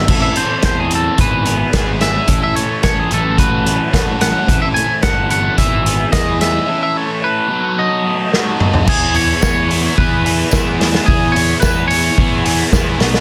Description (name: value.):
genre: indie rock.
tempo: 109 BPM.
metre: 4/4.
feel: straight.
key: E major.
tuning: A4 = 440 Hz.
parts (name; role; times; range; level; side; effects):
twangy electric guitar; melody; 0.0-12.9 s; G#4 to G#5; -21 LUFS; equal; none.
biting overdriven guitar; riff; 0.0-13.2 s; E3 to A4; -24 LUFS; equal; phaser.
crunchy overdriven guitar; riff; 0.0-13.2 s; E3 to G#4; -24 LUFS; equal; lush chorus.
fuzz picked electric bass; bass; 0.0-13.2 s; G1 to E2; -22 LUFS; equal; overdrive.
vintage drum kit; drums; 0.1-13.2 s; crash cymbal, hi-hat, kick drum, snare drum, toms; -18 LUFS; equal; soft clipping on snare.
tambourine; percussion; 9.4-12.9 s; none; -31 LUFS; equal; none.
room: little or no reverb.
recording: dense, heavily limited modern master.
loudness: -15 LUFS.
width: mono.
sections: 0.1-8.9 A section; 8.9-13.2 B section.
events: drum fill 8.3-8.9.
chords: 0.1 Am; 1.2 Emaj7/G#; 2.3 A; 3.1 F#m7/A; 4.5 Am; 5.6 Emaj7/G#; 6.7 A; 7.5 B7; 8.9 E6.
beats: | 0.09 0.64 1.19 1.74 | 2.29 2.84 3.39 3.94 | 4.49 5.04 5.59 6.14 | 6.69 7.24 7.79 8.34 | 8.88 9.43 9.98 10.53 | 11.08 11.63 12.18 12.73.